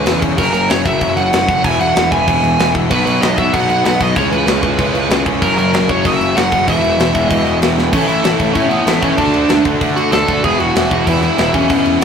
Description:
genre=punk rock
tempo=191 BPM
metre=4/4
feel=straight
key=E lydian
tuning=A4 = 440 Hz
part: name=smooth overdriven lead guitar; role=melody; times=0.0-12.0 s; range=B3 to G#5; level=-16 LUFS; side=right 1 dB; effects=none
part: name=crunchy overdriven guitar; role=riff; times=0.0-12.0 s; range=E2 to D4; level=-20 LUFS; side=left 6 dB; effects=none
part: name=crunchy overdriven guitar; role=riff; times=0.0-12.0 s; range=F#2 to F#4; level=-21 LUFS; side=equal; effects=none
part: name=fuzz picked electric bass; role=bass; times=0.0-12.0 s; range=E1 to D3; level=-20 LUFS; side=right 1 dB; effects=overdrive
part: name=tight metal drum kit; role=drums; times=0.1-12.0 s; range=crash cymbal, kick drum, snare drum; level=-18 LUFS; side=left 1 dB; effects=none
part: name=distorted electric guitar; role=riff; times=2.9-12.0 s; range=E2 to D4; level=-22 LUFS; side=right 6 dB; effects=overdrive
room=light reverb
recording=rough rehearsal-room recording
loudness=-11 LUFS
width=side -7 dB against mid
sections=0.0-7.9 A section; 7.9-12.0 B section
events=drum fill 7.8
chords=0.4 F#; 1.6 E; 2.9 B; 4.2 C#m; 5.4 F#; 6.7 E; 7.9 A; 9.2 D; 10.4 E

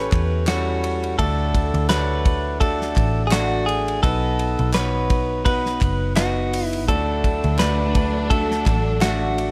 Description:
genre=piano-driven pop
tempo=84 BPM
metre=4/4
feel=swing 56% on 16ths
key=unclear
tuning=A4 = 439 Hz
part: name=direct-recorded clean electric guitar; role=melody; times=0.0-9.5 s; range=F#4 to B4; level=-27 LUFS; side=equal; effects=none
part: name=clear grand piano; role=accompaniment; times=0.0-9.5 s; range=A2 to F#5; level=-28 LUFS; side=equal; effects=none
part: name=vintage muted picked electric bass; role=bass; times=0.0-9.5 s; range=F#1 to E2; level=-26 LUFS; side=equal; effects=none
part: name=damped 70s drum kit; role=drums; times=0.1-9.5 s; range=handclaps, hi-hat, kick drum, ride cymbal, snare drum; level=-25 LUFS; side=equal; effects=none
part: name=group handclap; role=percussion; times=0.1-9.2 s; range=none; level=-37 LUFS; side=equal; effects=none
part: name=warm studio string section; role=sustained chords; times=6.9-9.5 s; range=F#3 to D4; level=-31 LUFS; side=equal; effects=none
room=studio reverb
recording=none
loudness=-21 LUFS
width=mono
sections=0.0-9.5 A section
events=none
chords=0.0 A7; 1.2 D; 4.0 B; 6.9 D

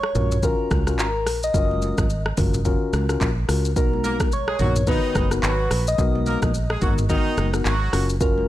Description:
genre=afrobeats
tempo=108 BPM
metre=4/4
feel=swing 58% on 16ths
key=F# major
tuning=A4 = 441 Hz
part: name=soft struck synth lead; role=melody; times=0.0-8.5 s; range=A#4 to D#5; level=-26 LUFS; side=equal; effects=chorus, digital delay
part: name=afro-pop drum kit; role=drums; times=0.0-8.4 s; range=handclaps, hi-hat, kick drum, rim click, shaker, toms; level=-24 LUFS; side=equal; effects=none
part: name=mellow tine electric piano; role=accompaniment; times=0.1-8.5 s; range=B3 to B4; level=-27 LUFS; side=left 5 dB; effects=none
part: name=fingered electric bass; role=bass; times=0.2-8.5 s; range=F#1 to C#2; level=-24 LUFS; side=equal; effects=none
part: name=congas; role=percussion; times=0.2-8.5 s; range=none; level=-32 LUFS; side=right 3 dB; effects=none
part: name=clear horn section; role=second line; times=4.0-8.1 s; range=D#3 to A#4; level=-29 LUFS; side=right 3 dB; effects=none
room=digital ambience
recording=none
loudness=-19 LUFS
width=side -14 dB against mid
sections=0.0-8.5 A section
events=none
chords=0.0 F#maj7; 3.8 Bmaj7; 7.9 F#maj7

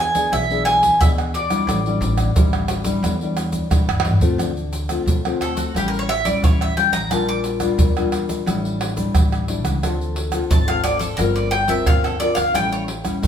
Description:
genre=samba and choro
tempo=88 BPM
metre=4/4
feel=straight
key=D minor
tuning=A4 = 440 Hz
part: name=bowl-back mandolin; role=melody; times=0.0-12.8 s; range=F#4 to D6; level=-20 LUFS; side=equal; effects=none
part: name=nylon-string guitar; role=accompaniment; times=0.0-13.3 s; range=A2 to Bb4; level=-24 LUFS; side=left 4 dB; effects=none
part: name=upright bass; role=bass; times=0.0-13.3 s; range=G1 to A2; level=-25 LUFS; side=equal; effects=none
part: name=egg shaker, surdo, pandeiro and tamborim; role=percussion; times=0.1-13.3 s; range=none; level=-20 LUFS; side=right 1 dB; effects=none
room=wet stone room reverb, RT60 1.1 s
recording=band playing live in one room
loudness=-17 LUFS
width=side -8 dB against mid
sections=0.0-4.4 A section; 4.4-13.3 B section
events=drum fill 3.9-4.4; mandolin solo 4.4-13.3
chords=0.0 E7; 1.7 A7sus4; 4.4 Dm7; 5.8 A7; 7.1 Gm7/Bb; 8.5 A7sus4; 9.8 Dm7; 11.2 Gm7; 12.6 A7

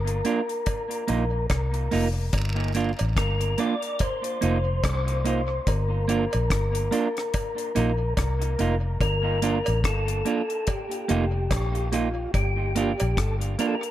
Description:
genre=dub reggae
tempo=72 BPM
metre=4/4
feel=swing 58% on 16ths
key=G minor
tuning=A4 = 440 Hz
part: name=percussive tonewheel organ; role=melody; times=0.0-13.9 s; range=F4 to D5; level=-29 LUFS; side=left 2 dB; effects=overdrive, chorus vibrato, fast rotary speaker, dub echo
part: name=vintage muted fingered electric bass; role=bass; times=0.0-13.6 s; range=F1 to C2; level=-25 LUFS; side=left 1 dB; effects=none
part: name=deep reggae drum kit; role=drums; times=0.1-13.9 s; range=hi-hat, kick drum, rim click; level=-29 LUFS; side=left 1 dB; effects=none
part: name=semi-hollow electric guitar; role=accompaniment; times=0.2-13.7 s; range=Bb3 to F4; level=-28 LUFS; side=right 5 dB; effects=dub echo
part: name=cowbell and jawbone-type rattle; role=percussion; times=0.7-13.2 s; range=none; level=-38 LUFS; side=right 4 dB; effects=dub echo
room=light reverb, small room reverb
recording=echo-heavy mix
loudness=-22 LUFS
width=side -13 dB against mid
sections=0.0-13.9 A section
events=none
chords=0.0 Gm7; 0.7 F7sus4; 2.3 Gm7; 4.0 F7sus4; 5.7 Gm7; 7.3 F7sus4; 9.0 Gm7; 10.7 F7sus4; 12.3 Gm7

